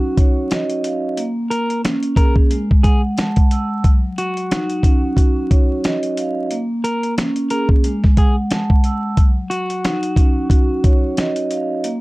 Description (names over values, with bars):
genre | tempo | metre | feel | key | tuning
hip hop, boom-bap hip-hop | 90 BPM | 4/4 | swing 57% on 16ths | Eb minor | A4 = 440 Hz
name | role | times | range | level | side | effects
electric guitar at the edge of break-up | melody | 0.0-11.3 s | Gb4 to Bb4 | -25 LUFS | equal | high-pass filter, low-pass filter, digital delay
vibraphone with medium mallets | accompaniment | 0.0-12.0 s | Gb3 to Fb6 | -20 LUFS | right 1 dB | cassette tape, high-pass filter, low-pass filter
dusty soul sampler-style drum kit | drums | 0.2-12.0 s | hi-hat, kick drum, snare drum | -15 LUFS | equal | none
room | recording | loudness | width
little or no reverb | dark, warm production, vinyl crackle | -15 LUFS | side -21 dB against mid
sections
0.0-12.0 A section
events
none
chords
0.0 Ebm9; 1.2 Bbm7; 2.5 Gbm9; 3.8 Ebm9; 6.5 Bbm7; 7.8 Gbm9; 9.2 Ebm9